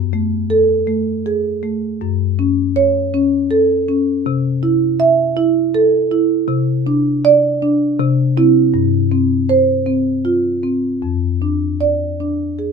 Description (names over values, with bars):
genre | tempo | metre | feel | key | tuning
classical, contemporary piece for solo marimba | 80 BPM | 3/4 | straight | C major from 4.3 s | A4 = 440 Hz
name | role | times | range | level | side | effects
marimba with soft mallets | solo | 0.0-12.7 s | F2 to E5 | -14 LUFS | right 1 dB | none
room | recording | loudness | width
little or no reverb | close, detailed microphones | -14 LUFS | side -5 dB against mid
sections
0.0-12.7 A section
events
none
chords
0.0 F#madd9; 2.0 A6/F#; 4.3 C6; 6.5 Csus2; 8.0 C; 8.7 G7sus4; 11.0 F5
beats
0.50 1.25 | 2.01 2.76 3.51 | 4.25 4.99 5.74 | 6.49 7.24 7.98 | 8.73 9.49 10.25 | 11.03 11.81 12.59